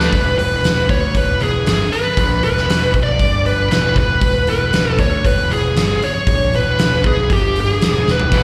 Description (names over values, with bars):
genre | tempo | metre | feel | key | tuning
hard rock | 117 BPM | 4/4 | straight | E mixolydian | A4 = 440 Hz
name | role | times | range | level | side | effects
bluesy overdriven lead guitar | melody | 0.0-8.4 s | G4 to D5 | -20 LUFS | equal | distortion, slapback echo
tight distorted guitar | riff | 0.0-0.1, 8.3-8.4 s | E2 to D4 | -29 LUFS | equal | none
tight distorted guitar | riff | 0.0-0.1, 8.3-8.4 s | E2 to D4 | -26 LUFS | equal | distortion, slapback echo
fuzz picked electric bass | bass | 0.0-8.4 s | E1 to D2 | -21 LUFS | equal | overdrive
big rock drum kit | drums | 0.0-8.4 s | hi-hat, kick drum, snare drum, toms | -21 LUFS | equal | none
room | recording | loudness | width
light reverb, small room ambience | live gig heard through the venue's PA, recital hall reverb | -16 LUFS | mono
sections
0.1-8.4 A section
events
drum fill 8.1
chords
0.1 E5; 3.2 G5; 3.7 E; 7.3 N.C.; 7.8 E